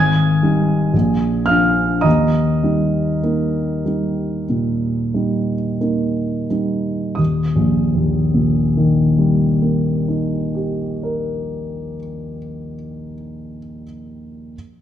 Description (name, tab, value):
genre	classical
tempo	42-59 BPM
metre	4/4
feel	rubato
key	Eb major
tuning	A4 = 441 Hz
part	dark baby grand piano	accompaniment	0.0-14.6 s	Eb1 to Ab6	-16 LUFS	equal	none
room	wet recital hall reverb, RT60 1.6 s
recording	dark, warm production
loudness	-16 LUFS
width	side -10 dB against mid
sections	0.0-7.2 A section; 7.2-12.4 B section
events	slowing down 0.0-7.2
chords	0.0 Ab5; 0.9 Bb7; 2.0 Eb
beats	0.93 | 2.05 3.24 4.49 5.81 | 7.18 8.49 9.78 11.07